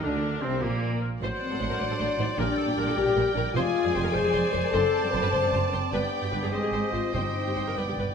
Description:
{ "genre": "classical, dramatic, fast romantic movement for symphony orchestra", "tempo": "101 BPM (dotted quarters)", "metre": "6/8", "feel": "rubato", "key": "G minor", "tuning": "A4 = 440 Hz", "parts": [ { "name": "warm symphonic violin section", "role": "melody", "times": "0.0-8.1 s", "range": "Bb3 to A5", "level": "-35 LUFS", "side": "left 2 dB", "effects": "none" }, { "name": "bright clarinet", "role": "second line", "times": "0.0-8.1 s", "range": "G4 to D5", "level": "-35 LUFS", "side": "left 2 dB", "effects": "none" }, { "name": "clear oboe", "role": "second line", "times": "0.0-8.1 s", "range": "Bb3 to Eb5", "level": "-35 LUFS", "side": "right 5 dB", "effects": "none" }, { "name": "rich symphonic violin section", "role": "second line", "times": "0.0-8.1 s", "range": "Bb3 to D5", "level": "-36 LUFS", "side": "left 5 dB", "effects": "none" }, { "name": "dark bassoon", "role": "accompaniment", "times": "0.0-8.1 s", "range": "Bb2 to C4", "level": "-36 LUFS", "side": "right 3 dB", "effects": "none" }, { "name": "rich symphonic viola section", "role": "accompaniment", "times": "0.0-8.0 s", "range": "Bb3 to C5", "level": "-35 LUFS", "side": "right 1 dB", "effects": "none" }, { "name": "mellow French horn section", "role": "sustained chords", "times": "0.0-7.8 s", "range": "Bb3 to C5", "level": "-28 LUFS", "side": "left 5 dB", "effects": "none" }, { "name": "rich symphonic cello section", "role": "bass", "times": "0.0-8.0 s", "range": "F2 to D3", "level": "-33 LUFS", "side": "right 3 dB", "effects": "none" }, { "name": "rich symphonic double bass section", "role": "bass", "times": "0.0-8.0 s", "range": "F1 to D2", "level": "-33 LUFS", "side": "right 4 dB", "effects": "none" }, { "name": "timpani", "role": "percussion", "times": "7.1-8.1 s", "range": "G2", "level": "-34 LUFS", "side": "left 1 dB", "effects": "none" } ], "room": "wet recital hall reverb, RT60 1.6 s", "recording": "none", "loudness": "-24 LUFS", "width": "side -6 dB against mid", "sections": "0.0-8.1 A section", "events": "timpani fill 7.8-8.1", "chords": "0.0 Bbadd9; 1.2 D7/A; 2.4 Gm/Bb; 3.6 Dm7b5/F; 4.7 D7/F#; 5.9 G; 6.5 Ab; 7.1 Cm/G" }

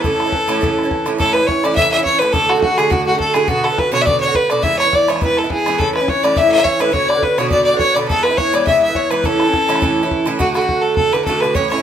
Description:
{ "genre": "celtic folk, Celtic reel", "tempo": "208 BPM", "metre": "4/4", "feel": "swing 54% on 8ths", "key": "A major", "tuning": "A4 = 438 Hz", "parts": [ { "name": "clear fiddle", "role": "melody", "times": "0.0-11.8 s", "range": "F#4 to E5", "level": "-16 LUFS", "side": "left 1 dB", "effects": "none" }, { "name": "breathy mellow wooden flute", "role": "second line", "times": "0.0-1.1, 5.8-10.3 s", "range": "G#4 to E5", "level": "-20 LUFS", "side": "left 7 dB", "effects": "none" }, { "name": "Irish bouzouki", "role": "accompaniment", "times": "0.0-11.8 s", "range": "G#2 to F#4", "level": "-19 LUFS", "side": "right 5 dB", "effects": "none" }, { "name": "bodhran", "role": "percussion", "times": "0.0-11.8 s", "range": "none", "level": "-23 LUFS", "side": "left 1 dB", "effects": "none" } ], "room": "moderate large studio reverb, RT60 0.9 s", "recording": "band playing live in one room", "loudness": "-13 LUFS", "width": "side -9 dB against mid", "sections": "0.0-1.2 A section; 1.2-10.4 A section; 10.4-11.8 B section", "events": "none", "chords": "0.0 A; 2.3 D; 3.5 Bm; 4.6 E; 5.8 A; 6.9 Bm; 8.1 E; 9.2 A; 10.4 D" }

